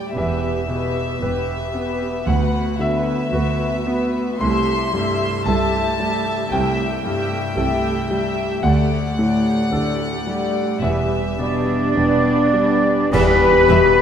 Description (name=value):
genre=cinematic, emotional film score for orchestra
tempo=50-57 BPM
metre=4/4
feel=rubato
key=E minor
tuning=A4 = 440 Hz
part: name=warm symphonic violin section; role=melody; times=0.0-13.8 s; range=B4 to E5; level=-28 LUFS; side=left 5 dB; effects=none
part: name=warm symphonic violin section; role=second line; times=0.0-13.8 s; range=B4 to C6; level=-28 LUFS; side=left 3 dB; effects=none
part: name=clear concert grand piano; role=accompaniment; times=0.0-14.0 s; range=C2 to C6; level=-22 LUFS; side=left 2 dB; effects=none
part: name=dark symphonic viola section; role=accompaniment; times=0.0-13.8 s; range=G3 to G4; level=-25 LUFS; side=right 3 dB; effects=none
part: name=dark symphonic double bass section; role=bass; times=0.2-13.8 s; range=E1 to E2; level=-25 LUFS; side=right 4 dB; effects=none
part: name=warm symphonic cello section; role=bass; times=0.2-14.0 s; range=C2 to B4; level=-22 LUFS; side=right 2 dB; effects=none
part: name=mellow small flute group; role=second line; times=11.4-14.0 s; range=D5 to B5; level=-21 LUFS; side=equal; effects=none
part: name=warm oboe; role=second line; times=11.4-14.0 s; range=D5 to B5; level=-23 LUFS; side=right 2 dB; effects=none
part: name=mellow French horn section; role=sustained chords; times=11.4-14.0 s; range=B3 to G4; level=-19 LUFS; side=left 6 dB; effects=none
part: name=clash cymbals and concert bass drum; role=percussion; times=13.1-14.0 s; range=none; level=-24 LUFS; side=equal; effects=none
part: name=timpani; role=percussion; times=13.1-14.0 s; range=E2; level=-27 LUFS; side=left 1 dB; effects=none
room=wet concert hall reverb, RT60 2.2 s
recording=none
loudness=-17 LUFS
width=side -8 dB against mid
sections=0.0-13.1 A section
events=band accent 13.1-14.0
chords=0.2 Em; 2.3 Bm/D; 4.4 C6; 8.6 Dsus4; 10.8 Em